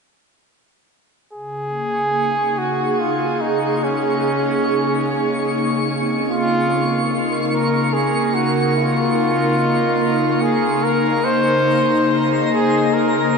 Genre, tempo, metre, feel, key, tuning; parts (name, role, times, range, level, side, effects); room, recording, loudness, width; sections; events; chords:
ambient; 72 BPM; 3/4; straight; Db major; A4 = 440 Hz
clear flugelhorn; melody; 1.3-13.4 s; Db4 to C5; -20 LUFS; equal; diffuse ambient delay
airy breathy pad; sustained chords; 1.3-13.4 s; Db3 to Eb5; -19 LUFS; equal; chorus
twinkling granular texture; texture; 1.9-13.4 s; Bb5 to Db6; -28 LUFS; equal; built-in reverb
tine electric piano; arpeggios; 2.9-11.3 s; C4 to F5; -34 LUFS; right 2 dB
wet shimmer reverb, RT60 7.7 s; cassette tape, nothing above 10.7 kHz; -16 LUFS; side -5 dB against mid
1.3-13.4 A section
1.3 Dbmaj7